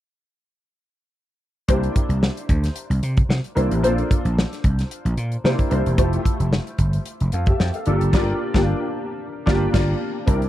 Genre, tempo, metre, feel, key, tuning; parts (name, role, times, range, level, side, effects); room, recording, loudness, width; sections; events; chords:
polished 1980s jazz-funk pop; 112 BPM; 4/4; swing 54% on 16ths; G dorian; A4 = 440 Hz
warm concert grand piano; accompaniment; 1.7-10.5 s; A3 to G5; -24 LUFS; left 1 dB; ensemble chorus
vintage slap bass; bass; 1.7-10.5 s; E1 to C3; -21 LUFS; equal
modern studio drum kit; drums; 1.7-10.5 s; crash cymbal, hi-hat, kick drum, snare drum; -20 LUFS; equal
little or no reverb; dry, close 1970s-style studio recording; -18 LUFS; side -13 dB against mid
1.7-10.3 A section
band accent 8.1-10.3
1.7 C7; 3.8 Bbmaj7; 5.4 C7; 6.0 Fmaj7; 7.9 Gm7